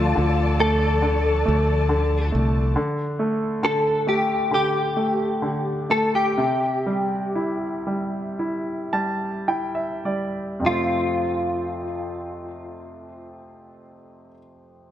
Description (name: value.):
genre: pop.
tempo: 50-69 BPM.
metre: 4/4.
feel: straight.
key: F major.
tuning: A4 = 439 Hz.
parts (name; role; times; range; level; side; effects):
direct-recorded clean electric guitar; melody; 0.0-14.3 s; F4 to A4; -23 LUFS; left 1 dB; ensemble chorus.
clear concert grand piano; accompaniment; 0.0-14.9 s; F2 to A5; -25 LUFS; equal; none.
warm studio string section; sustained chords; 0.0-2.7 s; F3 to A5; -28 LUFS; left 2 dB; none.
fingered electric bass; bass; 0.0-2.7 s; C2 to D2; -21 LUFS; equal; none.
room: moderate lush hall reverb, RT60 2.2 s.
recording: none.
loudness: -20 LUFS.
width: side -11 dB against mid.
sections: 0.0-10.7 A section; 10.7-14.9 B section.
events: slowing down 2.8-10.7; grand piano fill 8.4-10.7.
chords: 0.0 Dm; 2.8 Gsus2/D; 6.4 C; 10.7 F.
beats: 0.16 1.03 1.90 | 2.77 3.64 4.53 5.44 | 6.38 7.36 8.39 9.48 | 10.65 11.87 13.08 14.29.